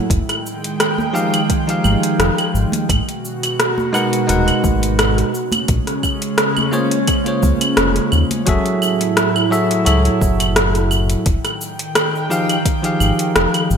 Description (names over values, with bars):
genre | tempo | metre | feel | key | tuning
sunset chillout | 86 BPM | 4/4 | swing 54% on 16ths | unclear | A4 = 440 Hz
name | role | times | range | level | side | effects
bell-like tine electric piano | accompaniment | 0.0-13.8 s | F3 to Gb5 | -19 LUFS | moving between left 2 dB and right 4 dB | auto-pan, digital delay
airy breathy pad | sustained chords | 0.0-13.8 s | A2 to G5 | -21 LUFS | equal | chorus
round analog bass | bass | 0.1-13.8 s | Eb1 to Eb2 | -18 LUFS | equal | none
deep house drum kit | drums | 0.1-13.8 s | cabasa, claves, hi-hat, rim click | -19 LUFS | equal | overdrive, gated reverb
electronic kick drum | drums | 0.1-12.8 s | none | -19 LUFS | equal | overdrive
congas | percussion | 1.0-8.4 s | none | -28 LUFS | right 4 dB | none
room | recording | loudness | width
moderate lush hall reverb, RT60 1.7 s, digital ambience | bright 1980s-style digital production | -14 LUFS | side -7 dB against mid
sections
0.0-8.5 A section; 8.5-13.8 B section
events
none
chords
0.1 Fm9; 2.9 Abm9; 5.3 Bbm9; 8.5 Gbm9; 11.3 Fm9